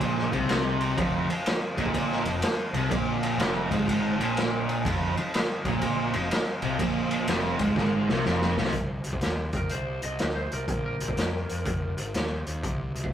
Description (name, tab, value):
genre	blues rock power trio and southern rock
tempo	124 BPM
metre	4/4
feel	swing 65% on 8ths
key	unclear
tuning	A4 = 440 Hz
part	overdriven tonewheel organ	sustained chords	0.0-8.7 s	Ab3 to G5	-40 LUFS	right 2 dB	none
part	sludgy distorted guitar	riff	0.0-8.7 s	F2 to C3	-27 LUFS	right 1 dB	overdrive
part	fuzz picked electric bass	bass	0.0-13.1 s	F1 to F2	-32 LUFS	left 1 dB	overdrive
part	raw garage drum kit	drums	0.0-13.1 s	hi-hat, kick drum, ride cymbal, snare drum	-28 LUFS	equal	none
part	lightly driven lead guitar	melody	9.6-12.3 s	Bb4 to Eb5	-35 LUFS	equal	none
room	moderate studio reverb, RT60 0.6 s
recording	rough rehearsal-room recording, tube saturation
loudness	-24 LUFS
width	side -10 dB against mid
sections	0.0-8.7 A section; 8.7-13.1 B section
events	drum fill 7.8-8.7; tonewheel organ fill 7.8-8.7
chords	0.0 Ab5; 1.0 F5; 8.7 Cm; 9.5 N.C.; 10.7 Bb5; 11.7 Fm